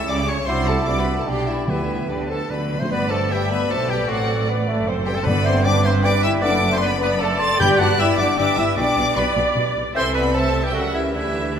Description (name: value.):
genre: quick classical-period movement for symphony orchestra.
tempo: 153 BPM.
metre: 3/4.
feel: straight.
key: G major.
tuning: A4 = 442 Hz.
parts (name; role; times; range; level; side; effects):
bright chamber violin section; melody; 0.0-11.6 s; D5 to A6; -26 LUFS; left 2 dB; none.
clear oboe; second line; 0.0-11.6 s; D4 to A5; -28 LUFS; right 1 dB; none.
mellow hollow concert flute; second line; 0.0-11.6 s; G4 to C6; -28 LUFS; left 2 dB; none.
rich chamber violin section; second line; 0.0-11.6 s; D4 to A5; -30 LUFS; left 3 dB; none.
rich symphonic viola section; accompaniment; 0.0-11.6 s; F#3 to E5; -27 LUFS; right 1 dB; none.
warm bassoon; accompaniment; 0.0-11.6 s; E3 to E4; -28 LUFS; right 2 dB; none.
rich symphonic cello section; bass; 0.0-11.6 s; F#2 to D3; -27 LUFS; right 2 dB; none.
warm chamber double bass section; bass; 0.0-11.6 s; F#1 to D2; -25 LUFS; right 3 dB; none.
clear clarinet; second line; 0.1-11.6 s; D4 to D5; -31 LUFS; left 2 dB; none.
mellow French horn section; sustained chords; 0.5-11.6 s; E3 to A4; -26 LUFS; left 4 dB; none.
timpani; percussion; 1.7-2.9, 5.3-8.1 s; G2 to D3; -28 LUFS; left 1 dB; none.
room: wet concert hall reverb, RT60 2.3 s.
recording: none.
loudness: -17 LUFS.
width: side -8 dB against mid.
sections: 0.0-2.9 A section; 2.9-11.6 B section.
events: timpani fill 2.5-2.9.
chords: 0.5 D7/C; 1.3 G/B; 1.7 G/D; 2.5 D; 2.9 G; 4.1 F#dim/A; 5.3 G; 6.4 D/F#; 7.6 G; 8.8 G/B; 10.0 Am/C; 10.7 C#dim7.